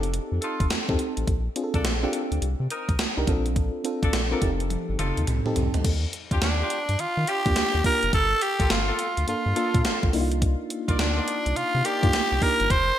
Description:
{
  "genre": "R&B, new jack swing",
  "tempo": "105 BPM",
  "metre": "4/4",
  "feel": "swing 64% on 16ths",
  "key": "unclear",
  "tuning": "A4 = 441 Hz",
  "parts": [
    { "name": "FM electric piano with auto-pan", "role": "accompaniment", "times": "0.0-12.7 s", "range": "Bb3 to Bb4", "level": "-29 LUFS", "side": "equal", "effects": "none" },
    { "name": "round analog bass", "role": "bass", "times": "0.0-12.9 s", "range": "F1 to Eb3", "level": "-27 LUFS", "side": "equal", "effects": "none" },
    { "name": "gated 80s digital drum machine", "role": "drums", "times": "0.0-12.9 s", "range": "crash cymbal, hi-hat, kick drum, snare drum, toms", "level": "-26 LUFS", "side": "equal", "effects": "gated reverb, gated reverb snare" },
    { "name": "warm horn section", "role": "stabs", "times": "0.4-12.1 s", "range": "Bb3 to D5", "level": "-34 LUFS", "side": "left 2 dB", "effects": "digital delay" },
    { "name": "raspy tenor saxophone", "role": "melody", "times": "6.4-13.0 s", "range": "D4 to C5", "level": "-24 LUFS", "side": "right 1 dB", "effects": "none" }
  ],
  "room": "light reverb",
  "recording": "bright 1980s-style digital production",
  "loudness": "-22 LUFS",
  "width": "side -11 dB against mid",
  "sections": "0.0-5.8 A section; 5.8-13.0 B section",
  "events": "drum fill 4.7-5.8",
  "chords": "0.0 F7; 1.3 Bbmaj7; 2.4 Cm7; 3.3 Bbmaj7; 4.4 F7; 5.8 Ebmaj9; 8.1 Gm9; 10.1 Cm11",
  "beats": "0.13 0.70 | 1.27 1.85 2.42 2.99 | 3.56 4.13 4.70 5.28 | 5.85 6.42 6.99 7.56 | 8.13 8.70 9.28 9.85 | 10.42 10.99 11.56 12.13 | 12.70"
}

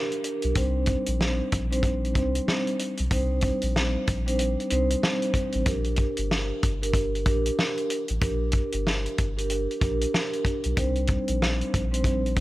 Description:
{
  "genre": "hip hop, boom-bap hip-hop",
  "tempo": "94 BPM",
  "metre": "4/4",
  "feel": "swing 62% on 16ths",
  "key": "C minor",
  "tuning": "A4 = 440 Hz",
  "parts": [
    { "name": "vibraphone with soft mallets", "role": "accompaniment", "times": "0.0-12.4 s", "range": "G3 to C5", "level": "-28 LUFS", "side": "equal", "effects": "high-pass filter, low-pass filter" },
    { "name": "warm soul drum kit", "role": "drums", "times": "0.1-12.4 s", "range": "hi-hat, kick drum, snare drum", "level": "-27 LUFS", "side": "equal", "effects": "none" },
    { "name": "soft dub sub bass", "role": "bass", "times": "0.4-12.4 s", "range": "G1 to C2", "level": "-28 LUFS", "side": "equal", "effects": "none" }
  ],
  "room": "little or no reverb",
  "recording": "none",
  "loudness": "-23 LUFS",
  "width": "side -17 dB against mid",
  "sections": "0.0-12.4 A section",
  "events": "break 0.0-0.6",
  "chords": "0.0 Gm; 0.6 Cmadd9; 5.7 Gm; 10.8 Cmadd9",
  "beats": "| 0.56 1.19 1.83 2.47 | 3.11 3.75 4.39 5.02 | 5.66 6.30 6.94 7.58 | 8.21 8.85 9.49 10.13 | 10.77 11.41 12.04"
}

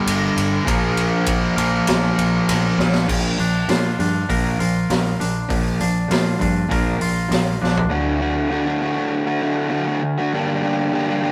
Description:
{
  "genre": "quiet-loud alternative rock",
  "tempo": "99 BPM",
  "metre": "4/4",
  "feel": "straight",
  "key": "unclear",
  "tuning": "A4 = 440 Hz",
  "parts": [
    { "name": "overdriven semi-hollow guitar", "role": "riff", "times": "0.0-11.3 s", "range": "D2 to G4", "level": "-22 LUFS", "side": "equal", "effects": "none" },
    { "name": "tight distorted guitar", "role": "riff", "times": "0.0-3.1 s", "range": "G2 to Bb3", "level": "-25 LUFS", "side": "equal", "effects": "distortion" },
    { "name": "growling picked electric bass", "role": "bass", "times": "0.1-7.9 s", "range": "G1 to Bb2", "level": "-29 LUFS", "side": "equal", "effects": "overdrive" },
    { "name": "raw garage drum kit", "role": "drums", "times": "0.1-7.9 s", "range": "crash cymbal, hi-hat, kick drum, ride cymbal, snare drum, toms", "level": "-26 LUFS", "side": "equal", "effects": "none" },
    { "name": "twangy electric guitar", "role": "arpeggios", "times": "3.1-7.9 s", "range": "Bb2 to Bb4", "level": "-28 LUFS", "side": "equal", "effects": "none" }
  ],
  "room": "light reverb",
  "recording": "band playing live in one room",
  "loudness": "-20 LUFS",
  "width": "mono",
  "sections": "0.0-3.1 A section; 3.1-7.9 B section; 7.9-11.3 C section",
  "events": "half time 0.0-3.1; drum fill 2.8-3.1, 7.6-7.9",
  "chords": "0.0 G5; 0.7 Bb5; 3.1 Bb; 7.9 D; 10.3 Gm",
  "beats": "0.07 | 0.68 1.28 1.88 2.49 | 3.09 3.70 4.30 4.91 | 5.51 6.12 6.72 7.32 | 7.93 8.53 9.13 9.74 | 10.34 10.94"
}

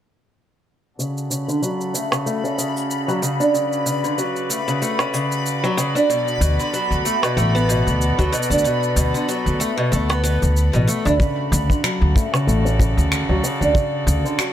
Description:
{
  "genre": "folktronica",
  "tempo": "94 BPM",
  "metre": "4/4",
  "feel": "swing 56% on 16ths",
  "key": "D major",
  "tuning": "A4 = 440 Hz",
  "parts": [
    { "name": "rich string quartet", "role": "sustained chords", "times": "1.0-14.5 s", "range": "C#3 to D5", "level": "-26 LUFS", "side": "equal", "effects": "low-pass filter" },
    { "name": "picked acoustic archtop guitar", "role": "arpeggios", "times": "1.0-14.5 s", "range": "B2 to D4", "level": "-21 LUFS", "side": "equal", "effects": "low-pass filter, ping-pong delay" },
    { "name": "electronic cabasa, percussion blips and finger snaps", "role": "drums", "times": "1.0-14.5 s", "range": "none", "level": "-25 LUFS", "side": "right 1 dB", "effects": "none" },
    { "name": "backwards swelling texture", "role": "texture", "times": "1.6-11.2 s", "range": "B5", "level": "-29 LUFS", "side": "right 1 dB", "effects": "built-in reverb" },
    { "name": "upright bass", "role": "bass", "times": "6.4-14.2 s", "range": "A1 to D2", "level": "-19 LUFS", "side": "equal", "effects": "none" },
    { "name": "kick drum", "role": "drums", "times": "11.2-13.9 s", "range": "none", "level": "-17 LUFS", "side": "equal", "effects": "none" }
  ],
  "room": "light reverb, small room ambience",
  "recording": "none",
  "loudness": "-17 LUFS",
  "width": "side -11 dB against mid",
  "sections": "1.0-11.2 A section; 11.2-14.5 B section",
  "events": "filter sweep on steel-string acoustic guitar 1.0-11.2, 11.2-14.5; filter sweep on string quartet 1.0-11.2",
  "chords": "1.0 Dmaj7; 6.1 Bm7; 11.2 Dmaj7",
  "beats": "| 0.99 1.63 2.26 2.90 | 3.54 4.18 4.82 5.46 | 6.09 6.73 7.37 8.01 | 8.65 9.29 9.92 10.56 | 11.20 11.84 12.48 13.12 | 13.75 14.39"
}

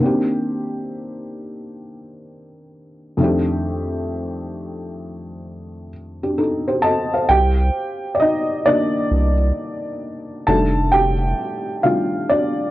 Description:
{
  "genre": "lo-fi hip hop",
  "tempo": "66 BPM",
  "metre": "4/4",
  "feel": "swing 65% on 16ths",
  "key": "C dorian",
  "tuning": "A4 = 440 Hz",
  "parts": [
    { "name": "felt-muted upright piano", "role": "accompaniment", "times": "0.0-12.7 s", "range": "F2 to A5", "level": "-19 LUFS", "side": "equal", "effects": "low-pass filter" },
    { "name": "saturated sub bass", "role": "bass", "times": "7.3-11.3 s", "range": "F1 to C2", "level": "-18 LUFS", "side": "equal", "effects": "none" }
  ],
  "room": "moderate small room reverb, RT60 0.5 s",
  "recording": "cassette tape",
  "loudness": "-17 LUFS",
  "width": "side -16 dB against mid",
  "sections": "0.0-7.3 A section; 7.3-12.7 B section",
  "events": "felt piano solo 7.3-12.7",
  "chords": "0.0 Cm9; 3.2 F13; 7.3 Cm9; 10.5 F13",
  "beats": "| 0.01 0.92 1.83 2.74 | 3.65 4.55 5.46 6.37 | 7.28 8.19 9.10 10.01 | 10.92 11.83"
}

